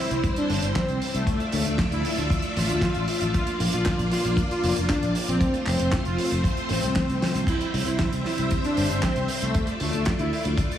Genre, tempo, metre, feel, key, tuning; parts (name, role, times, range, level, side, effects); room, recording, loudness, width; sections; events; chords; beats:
italo disco; 116 BPM; 4/4; straight; A4 = 440 Hz
analog synth brass; melody; 0.0-10.4 s; A3 to F4; -28 LUFS; equal; chorus, cassette tape, digital delay
string machine, full ensemble; sustained chords; 0.0-10.8 s; G3 to E5; -28 LUFS; left 1 dB; ensemble chorus
fingered electric bass; bass; 0.1-10.6 s; F1 to D2; -27 LUFS; equal; digital delay
damped 70s drum kit; drums; 0.1-10.8 s; crash cymbal, handclaps, hi-hat, snare drum; -30 LUFS; right 1 dB; studio reverb
kick drum; drums; 0.2-10.7 s; -26 LUFS; equal; studio reverb
moderate lush hall reverb, RT60 1.8 s, small room ambience; -22 LUFS; side -10 dB against mid
0.0-7.5 A section; 7.5-10.8 A section
drum fill 7.2; band accent 7.2
0.0 C; 1.3 Dmadd9; 3.3 Bb; 5.4 F; 7.5 C; 9.5 Dmadd9
0.24 0.75 | 1.27 1.79 2.31 2.82 | 3.34 3.86 4.37 4.89 | 5.41 5.92 6.44 6.96 | 7.48 7.99 8.51 9.03 | 9.55 10.06 10.58